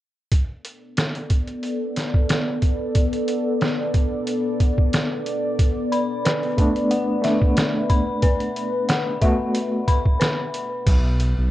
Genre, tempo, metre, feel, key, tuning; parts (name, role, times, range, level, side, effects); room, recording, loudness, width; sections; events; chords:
trip hop; 91 BPM; 4/4; swing 54% on 16ths; B minor; A4 = 440 Hz
deep dark ambient pad; sustained chords; 1.2-10.8 s; B3 to D5; -26 LUFS; left 1 dB; chorus, built-in reverb
trip hop sampler-style drum kit; drums; 0.3-11.4 s; crash cymbal, hi-hat, kick drum, snare drum; -20 LUFS; equal
dark detuned synth bell; arpeggios; 5.9-10.9 s; B4 to B5; -27 LUFS; left 3 dB; chorus, tremolo, digital delay
overdriven reed electric piano; accompaniment; 6.6-9.9 s; A3 to F#4; -24 LUFS; equal; tremolo, tape echo
dark detuned saw bass; bass; 10.9-11.5 s; B1; -19 LUFS; equal
light reverb, digital ambience; worn, warbling old tape, cassette tape, warbly pitch drift; -19 LUFS; side -14 dB against mid
0.3-10.9 A section
0.3 Bm7; 10.9 N.C.